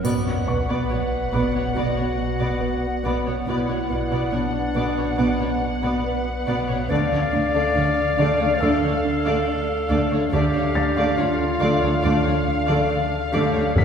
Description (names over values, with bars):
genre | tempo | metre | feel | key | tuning
cinematic, suspense film score | 70 BPM | 4/4 | straight | B minor | A4 = 439 Hz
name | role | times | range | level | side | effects
muted symphonic violin section | melody | 0.0-13.8 s | F5 to F#5 | -28 LUFS | left 2 dB | none
clear clarinet | second line | 0.0-13.8 s | D4 to D5 | -27 LUFS | left 2 dB | none
muted symphonic violin section | second line | 0.0-13.8 s | C#5 to D5 | -31 LUFS | left 1 dB | none
muted symphonic viola section | accompaniment | 0.0-13.8 s | F#3 to B3 | -29 LUFS | equal | none
glass harmonica | sustained chords | 0.0-13.8 s | F#4 to F#5 | -32 LUFS | left 2 dB | none
fat analog bass | riff | 0.0-13.8 s | F#2 to D4 | -27 LUFS | right 2 dB | none
muted symphonic cello section | bass | 0.0-13.8 s | F#2 to D3 | -27 LUFS | right 2 dB | none
punchy sub bass | drone | 0.0-13.8 s | F#1 to D2 | -31 LUFS | equal | none
triangle | percussion | 0.0-1.7 s | none | -40 LUFS | equal | none
swell and sub drop | sound effects | 0.0-3.5 s | none | -32 LUFS | equal | none
muted symphonic double bass section | bass | 0.1-13.8 s | F#1 to D2 | -30 LUFS | right 1 dB | none
warm grand piano | texture | 0.5-13.8 s | C#6 to B6 | -36 LUFS | left 2 dB | none
timpani | percussion | 13.8 s | F#2 | -15 LUFS | left 1 dB | none
room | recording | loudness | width
wet scoring stage reverb, RT60 1.9 s | heard from further back in the room | -19 LUFS | side -7 dB against mid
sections
0.0-13.8 A section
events
impact 0.0-3.5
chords
0.0 Bm; 6.9 Dm